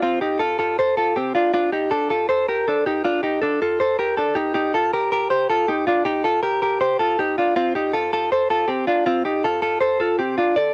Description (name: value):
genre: indie pop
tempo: 160 BPM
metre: 4/4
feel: straight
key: G minor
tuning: A4 = 440 Hz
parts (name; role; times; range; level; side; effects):
- direct-recorded clean electric guitar; solo; 0.0-10.7 s; C4 to D5; -21 LUFS; equal; subtle chorus, cassette tape
room: little or no reverb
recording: home recording on cassette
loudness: -21 LUFS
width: mono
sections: 0.0-10.6 A section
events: none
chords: 0.0 F; 1.5 Gmadd9; 7.6 Fadd9